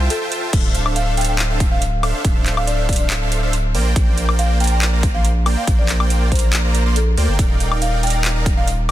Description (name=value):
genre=future bass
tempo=140 BPM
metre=4/4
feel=half-time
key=D minor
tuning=A4 = 440 Hz
part: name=supersaw chords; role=riff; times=0.0-8.9 s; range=Bb3 to C6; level=-23 LUFS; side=right 2 dB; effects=sidechain pumping
part: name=saturated sub bass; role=bass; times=0.0-8.9 s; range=D1 to D2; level=-18 LUFS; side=equal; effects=sidechain pumping
part: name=buzzing marimba with medium mallets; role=melody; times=0.1-8.7 s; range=A4 to G5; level=-27 LUFS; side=left 1 dB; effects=sidechain pumping, ping-pong delay
part: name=trap drum kit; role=drums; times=0.1-8.9 s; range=crash cymbal, handclaps, hi-hat, woodblock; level=-24 LUFS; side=left 1 dB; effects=none
part: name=electronic kick drum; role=drums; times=0.5-8.6 s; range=none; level=-17 LUFS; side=equal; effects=none
room=little or no reverb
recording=dense, heavily limited modern master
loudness=-15 LUFS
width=side -14 dB against mid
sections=0.0-8.9 A section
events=none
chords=0.0 Fmaj7; 0.5 Dm7; 3.7 Bb6; 7.4 Ebmaj7